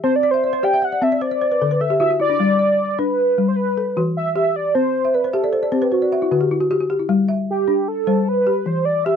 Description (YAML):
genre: west african traditional, West African string and xylophone music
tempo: 102 BPM (dotted quarters)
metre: 12/8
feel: straight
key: G major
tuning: A4 = 440 Hz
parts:
  - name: warm velvety synth lead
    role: melody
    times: 0.0-9.2 s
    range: F#4 to G5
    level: -18 LUFS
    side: right 1 dB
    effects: chorus
  - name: balafon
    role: arpeggios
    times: 0.0-9.2 s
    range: D3 to F#5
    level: -20 LUFS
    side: left 3 dB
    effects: none
room: light reverb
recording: dry, close 1970s-style studio recording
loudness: -16 LUFS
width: side -7 dB against mid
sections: 0.0-7.1 A section; 7.1-9.2 B section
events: balafon fill 0.2-2.4, 5.0-7.1; soft synth lead solo 7.1-9.2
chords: 0.0 C5; 1.2 D; 2.4 G; 3.6 Em; 4.7 C5; 5.9 D; 7.1 G5; 8.3 Em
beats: | 0.04 0.62 1.21 1.80 | 2.39 2.98 3.56 4.15 | 4.74 5.33 5.92 6.50 | 7.09 7.68 8.26 8.85